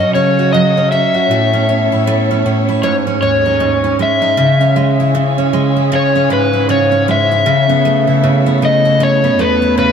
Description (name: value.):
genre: pop.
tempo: 78 BPM.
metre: 4/4.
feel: swing 60% on 16ths.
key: C# minor.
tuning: A4 = 439 Hz.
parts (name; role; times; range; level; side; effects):
overdriven slide guitar; melody; 0.0-9.9 s; B4 to E5; -14 LUFS; left 3 dB; none.
picked steel-string acoustic guitar; accompaniment; 0.0-9.9 s; G#2 to F#4; -15 LUFS; right 7 dB; none.
warm studio string section; sustained chords; 0.0-9.9 s; D#3 to C#5; -22 LUFS; left 2 dB; none.
dark bass clarinet; bass; 0.0-9.9 s; D#2 to C#3; -16 LUFS; left 3 dB; none.
room: moderate plate reverb, RT60 2.7 s.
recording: heard from further back in the room.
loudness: -10 LUFS.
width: side -7 dB against mid.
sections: 0.0-4.4 A section; 4.4-9.9 A section.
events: none.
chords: 0.0 F#m; 1.3 Aadd9; 2.8 G#sus4; 4.4 C#m; 7.5 Aadd9/C#.